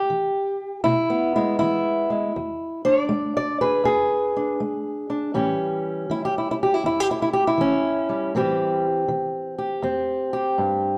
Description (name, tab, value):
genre	acoustic country blues, solo or duo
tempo	80 BPM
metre	4/4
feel	swing 67% on 8ths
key	unclear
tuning	A4 = 441 Hz
part	fingerpicked old ladder-braced acoustic guitar	solo	0.0-11.0 s	E2 to D5	-23 LUFS	equal	none
room	moderate large studio reverb, RT60 1.0 s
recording	band playing live in one room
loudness	-23 LUFS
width	mono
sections	0.0-11.0 A section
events	none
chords	0.0 E7; 5.3 A7; 8.3 Am7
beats	0.08 0.83 1.58 | 2.33 3.08 3.83 4.58 | 5.34 6.09 6.84 7.59 | 8.34 9.09 9.84 10.59